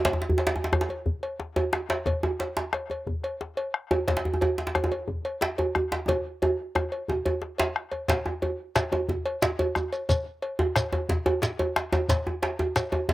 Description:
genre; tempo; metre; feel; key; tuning
west african traditional, West African drum ensemble; 120 BPM (dotted quarters); 12/8; straight; none; none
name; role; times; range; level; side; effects
djembe; percussion; 0.0-13.1 s; none; -26 LUFS; right 1 dB; none
bombo; percussion; 0.1-13.1 s; none; -30 LUFS; left 2 dB; none
cowbell; percussion; 0.1-13.1 s; none; -31 LUFS; left 2 dB; none
djembe; percussion; 0.1-13.1 s; none; -34 LUFS; left 2 dB; none
shekere; percussion; 8.1-12.9 s; none; -30 LUFS; equal; none
room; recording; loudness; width
light reverb; recorded outdoors, with no room sound; -25 LUFS; side -17 dB against mid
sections
0.0-8.1 A section; 8.1-13.1 B section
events
drum fill 6.1-8.1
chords
none

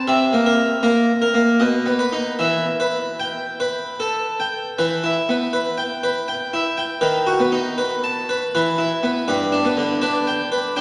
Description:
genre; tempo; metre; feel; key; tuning
classical, baroque-style suite movement for harpsichord; 74-82 BPM; 3/4; rubato; E minor; A4 = 440 Hz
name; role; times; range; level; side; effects
harpsichord; solo; 0.0-10.8 s; G2 to Bb5; -20 LUFS; equal; none
room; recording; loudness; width
wet cathedral reverb, RT60 4.1 s; none; -20 LUFS; mono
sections
0.0-4.8 A section; 4.8-10.8 B section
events
none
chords
0.1 C7; 1.6 B; 2.4 Em; 7.0 B7/D#; 8.5 E5; 9.3 G

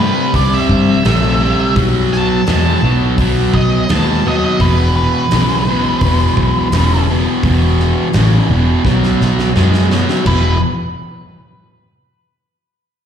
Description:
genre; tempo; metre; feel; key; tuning
blues rock power trio and southern rock; 85 BPM; 4/4; straight; E minor; A4 = 442 Hz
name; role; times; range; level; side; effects
octave-fuzz lead guitar; melody; 0.0-10.6 s; B4 to A5; -19 LUFS; right 1 dB; distortion, slapback echo
fuzz guitar; riff; 0.0-10.6 s; E2 to A3; -15 LUFS; equal; distortion
vintage muted picked electric bass; bass; 0.0-10.6 s; E1 to G2; -14 LUFS; equal; none
big rock drum kit; drums; 0.3-10.4 s; crash cymbal, hi-hat, kick drum, snare drum; -21 LUFS; equal; none
room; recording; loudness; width
light reverb, studio reverb; live gig heard through the venue's PA, recital hall reverb; -11 LUFS; side -8 dB against mid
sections
0.0-10.3 A section; 10.3-13.1 B section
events
drum fill 8.8-10.3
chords
0.0 C7; 1.8 B7; 4.6 E5; 8.8 B5; 10.3 E5

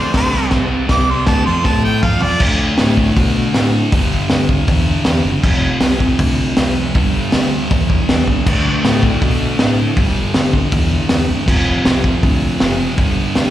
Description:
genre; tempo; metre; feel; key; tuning
garage rock duo or trio; 159 BPM; 4/4; straight; unclear; A4 = 436 Hz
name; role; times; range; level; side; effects
bright harmonica; melody; 0.0-2.4 s; C5 to D6; -19 LUFS; right 1 dB; overdrive, slapback echo
thick fuzz guitar; riff; 0.0-13.5 s; F2 to A4; -18 LUFS; equal; distortion, slapback echo
fuzz fingered electric bass; bass; 0.0-13.5 s; F1 to B2; -19 LUFS; equal; overdrive
crunchy breakbeat drum kit; drums; 0.1-13.4 s; crash cymbal, hi-hat, kick drum, snare drum, toms; -16 LUFS; equal; none
room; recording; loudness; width
light reverb, small room ambience; live gig heard through the venue's PA, recital hall reverb; -12 LUFS; side -12 dB against mid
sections
0.0-2.4 A section; 2.4-13.5 B section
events
harmonica solo 0.0-2.4; drum fill 1.7-2.4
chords
0.3 C5; 1.3 D5; 1.7 A5; 2.0 F5; 2.4 D5; 3.9 G5; 5.4 F5; 7.0 G5; 8.5 D5; 10.0 G5; 11.5 F5; 13.0 G5

